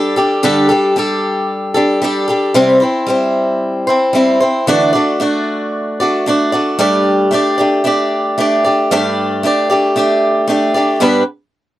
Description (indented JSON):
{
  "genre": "rock",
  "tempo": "113 BPM",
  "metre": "4/4",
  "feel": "straight",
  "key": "unclear",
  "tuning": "A4 = 440 Hz",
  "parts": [
    { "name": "picked swing-style acoustic guitar", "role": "solo", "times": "0.0-11.2 s", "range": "G2 to D5", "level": "-12 LUFS", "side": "equal", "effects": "none" }
  ],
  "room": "light reverb",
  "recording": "dry, close 1970s-style studio recording",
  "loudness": "-12 LUFS",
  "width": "side -14 dB against mid",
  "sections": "0.0-6.8 A section; 6.8-11.0 B section",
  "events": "none",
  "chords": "0.0 Gsus2; 2.6 C; 4.7 Dadd9; 6.8 Gsus2; 11.0 G",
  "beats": "| 0.43 0.96 1.49 2.02 | 2.55 3.08 3.61 4.14 | 4.67 5.20 5.73 6.26 | 6.79 7.32 7.85 8.37 | 8.90 9.43 9.96 10.48 | 11.01"
}